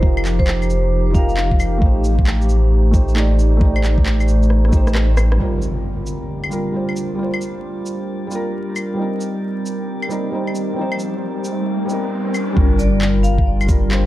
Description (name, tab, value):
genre	future garage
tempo	134 BPM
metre	4/4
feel	swing 65% on 16ths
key	G minor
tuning	A4 = 440 Hz
part	vibraphone with medium hard mallets	melody	0.0-1.8, 12.8-13.5 s	C5 to F5	-26 LUFS	left 1 dB	vintage 12-bit sampler grit, digital delay
part	felt-muted upright piano	accompaniment	0.0-14.1 s	F3 to D5	-24 LUFS	right 1 dB	sidechain pumping, low-pass filter, dub echo
part	warbly tape-like pad	sustained chords	0.0-14.1 s	F3 to C5	-24 LUFS	equal	chorus, built-in reverb, sidechain pumping
part	soft dub sub bass	bass	0.0-5.4, 12.6-14.1 s	F1 to A1	-16 LUFS	equal	sidechain pumping
part	electronic kick drum	drums	0.0-4.8, 12.6-13.8 s	none	-16 LUFS	equal	overdrive, studio reverb
part	electronic claves, handclaps, shaker, rim click and cabasa	drums	0.2-14.0 s	none	-26 LUFS	left 1 dB	overdrive, studio reverb
part	impact, riser and sub drop	sound effects	5.4-14.1 s	none	-26 LUFS	equal	none
part	drifting glass-harmonics texture	texture	6.0-14.1 s	F3 to G4	-34 LUFS	right 1 dB	chorus, built-in reverb
room	digital ambience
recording	dark, warm production, vinyl crackle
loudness	-15 LUFS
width	side -15 dB against mid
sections	0.0-5.4 A section; 5.4-12.6 B section; 12.6-14.1 C section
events	filter sweep on felt piano 0.0-5.4; drum fill 4.5-5.4; band accent 5.3; impact 5.4-7.2, 12.6-14.1; filter sweep on ambient pad 5.4-12.6; riser 10.8-12.6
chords	0.0 F9sus4; 1.8 Am7b5; 5.4 Gm7; 9.0 Cm7/G; 12.6 Gm7